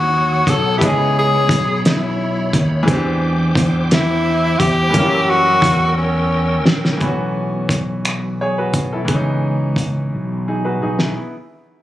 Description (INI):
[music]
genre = slow six-eight R&B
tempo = 58 BPM (dotted quarters)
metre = 6/8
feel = straight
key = C# minor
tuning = A4 = 440 Hz
[part]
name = breathy tenor saxophone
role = melody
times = 0.0-6.7 s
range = C#4 to A4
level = -17 LUFS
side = left 1 dB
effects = tape echo
[part]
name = bright grand piano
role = accompaniment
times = 0.0-11.3 s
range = E3 to D#5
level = -23 LUFS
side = left 1 dB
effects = none
[part]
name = bright tonewheel organ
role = sustained chords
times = 0.0-7.0 s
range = A#4 to E6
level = -26 LUFS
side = equal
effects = chorus vibrato, fast rotary speaker
[part]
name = fretless electric bass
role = bass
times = 0.0-11.1 s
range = A#1 to F#2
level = -19 LUFS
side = equal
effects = none
[part]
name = cloth-damped thuddy drum kit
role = drums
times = 0.5-11.1 s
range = finger snaps, hi-hat, kick drum, snare drum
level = -18 LUFS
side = equal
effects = none
[sound]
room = small room ambience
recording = recorded on a phone in the room, club reverb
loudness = -14 LUFS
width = side -14 dB against mid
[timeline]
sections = 0.0-7.0 A section; 7.0-11.1 B section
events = drum fill 6.0-7.0, 10.1-11.1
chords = 0.0 D#m7b5; 0.8 C#m7; 2.9 E7alt; 4.9 F#7b9; 7.0 B9sus4; 9.1 C#m7